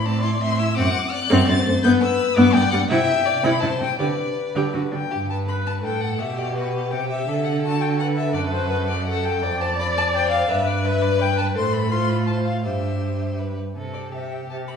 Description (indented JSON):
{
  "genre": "quick classical-period movement for string quartet",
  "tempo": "167 BPM",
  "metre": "3/4",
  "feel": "straight",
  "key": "G major, C major from 9.4 s",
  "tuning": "A4 = 440 Hz",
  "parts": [
    { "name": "rich violin", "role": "melody", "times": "0.0-14.7 s", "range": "B4 to A6", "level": "-25 LUFS", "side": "left 6 dB", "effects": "none" },
    { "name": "clear violin", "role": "second line", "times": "0.0-14.8 s", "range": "F#4 to F#5", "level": "-28 LUFS", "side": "left 4 dB", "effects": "none" },
    { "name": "rich viola", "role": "accompaniment", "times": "0.0-14.8 s", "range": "G3 to D5", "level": "-24 LUFS", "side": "equal", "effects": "none" },
    { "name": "clear cello", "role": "bass", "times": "0.1-14.8 s", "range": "F2 to D3", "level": "-24 LUFS", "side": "right 2 dB", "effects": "none" }
  ],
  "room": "wet recital hall reverb, RT60 1.4 s",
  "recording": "heard from further back in the room",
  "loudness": "-19 LUFS",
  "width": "side -7 dB against mid",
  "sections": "0.0-5.1 A section; 5.1-13.8 B section; 13.8-14.8 C section",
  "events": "none",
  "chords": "0.0 Am; 0.8 D7; 1.8 G; 2.9 C; 4.0 G; 4.7 N.C.; 5.1 G; 6.2 G/B; 7.3 D; 8.3 F#madd11; 9.4 Dm/F; 10.5 G; 11.6 F/A; 12.6 C/G; 13.8 C5"
}